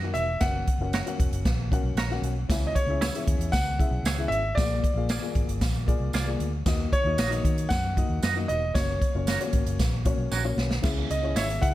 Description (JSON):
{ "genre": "uptempo 1960s-style soul", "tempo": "115 BPM", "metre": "4/4", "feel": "straight", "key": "C# dorian", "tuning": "A4 = 442 Hz", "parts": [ { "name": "clear grand piano", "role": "melody", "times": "0.0-11.7 s", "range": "C#5 to F#5", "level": "-30 LUFS", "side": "equal", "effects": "none" }, { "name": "warm upright piano", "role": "accompaniment", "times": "0.0-11.7 s", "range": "A#2 to A#5", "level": "-34 LUFS", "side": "left 6 dB", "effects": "none" }, { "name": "vintage muted fingered electric bass", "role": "bass", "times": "0.0-11.7 s", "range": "E1 to D#3", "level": "-29 LUFS", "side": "equal", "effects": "none" }, { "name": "swinging big-band drum kit", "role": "drums", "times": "0.1-11.7 s", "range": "crash cymbal, hi-hat, kick drum, snare drum", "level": "-27 LUFS", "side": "equal", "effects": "none" }, { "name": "semi-hollow electric guitar", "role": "stabs", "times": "0.9-11.5 s", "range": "C#4 to D#5", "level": "-33 LUFS", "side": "right 6 dB", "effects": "tremolo" }, { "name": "tambourine", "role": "percussion", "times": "2.5-11.5 s", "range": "none", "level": "-40 LUFS", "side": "right 5 dB", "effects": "none" } ], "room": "little or no reverb", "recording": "none", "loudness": "-23 LUFS", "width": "side -15 dB against mid", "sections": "0.0-10.8 A section", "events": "upright piano fill 1.7-2.5; drum fill 10.3-10.8", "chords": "0.4 F#; 2.5 C#m; 4.6 A#7; 6.7 D#m; 8.8 F#; 10.8 C#m", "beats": "| 0.41 0.93 1.45 1.97 | 2.50 3.02 3.54 4.06 | 4.58 5.10 5.62 6.14 | 6.66 7.19 7.71 8.23 | 8.76 9.28 9.80 10.32 | 10.85 11.37" }